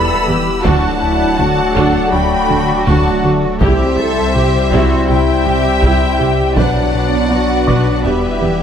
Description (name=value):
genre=cinematic, hybrid orchestral and electronic film score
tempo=81 BPM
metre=4/4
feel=straight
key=unclear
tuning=A4 = 440 Hz
part: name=rich symphonic violin section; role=melody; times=0.0-8.6 s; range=E5 to E6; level=-21 LUFS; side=left 3 dB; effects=none
part: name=rich symphonic violin section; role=second line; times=0.0-8.6 s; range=B4 to B5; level=-21 LUFS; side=left 2 dB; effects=none
part: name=rich symphonic viola section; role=accompaniment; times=0.0-8.5 s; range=F#3 to B4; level=-21 LUFS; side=right 2 dB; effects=none
part: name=phased analog pad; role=sustained chords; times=0.0-8.6 s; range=E3 to D5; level=-21 LUFS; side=right 1 dB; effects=phaser, chorus
part: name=warm French horn section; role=sustained chords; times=0.0-8.6 s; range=F#3 to D4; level=-21 LUFS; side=left 3 dB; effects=none
part: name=round analog bass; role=riff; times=0.0-8.6 s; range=C2 to B3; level=-20 LUFS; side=left 1 dB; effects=none
part: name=pure sine sub bass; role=bass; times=0.0-8.6 s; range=D1 to C2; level=-22 LUFS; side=equal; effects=none
part: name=rich symphonic cello section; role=bass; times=0.0-8.6 s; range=D4 to A4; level=-20 LUFS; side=right 1 dB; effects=none
part: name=dark concert grand piano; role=texture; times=0.0-8.6 s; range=D5 to D6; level=-28 LUFS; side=right 1 dB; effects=none
part: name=dark symphonic double bass section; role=bass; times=0.3-8.5 s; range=B1 to E2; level=-21 LUFS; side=right 3 dB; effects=none
part: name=taiko ensemble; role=drums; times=0.6-8.4 s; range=none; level=-21 LUFS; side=equal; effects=none
room=moderate scoring stage reverb, RT60 2.0 s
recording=none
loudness=-11 LUFS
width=side -8 dB against mid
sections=0.0-8.6 A section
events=none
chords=0.0 Em; 0.6 D; 3.6 C; 6.6 Bm; 8.1 Em